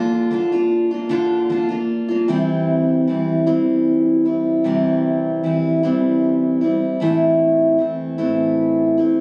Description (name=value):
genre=rock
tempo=51 BPM (dotted quarters)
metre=6/8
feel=straight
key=unclear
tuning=A4 = 437 Hz
part: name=picked steel-string acoustic guitar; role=solo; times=0.0-9.2 s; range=A2 to F4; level=-18 LUFS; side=equal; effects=none
room=light reverb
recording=recorded on a phone in the room, club reverb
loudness=-18 LUFS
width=mono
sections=0.0-2.3 A section; 2.3-9.2 B section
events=none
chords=0.0 Bb; 2.3 C; 7.0 Am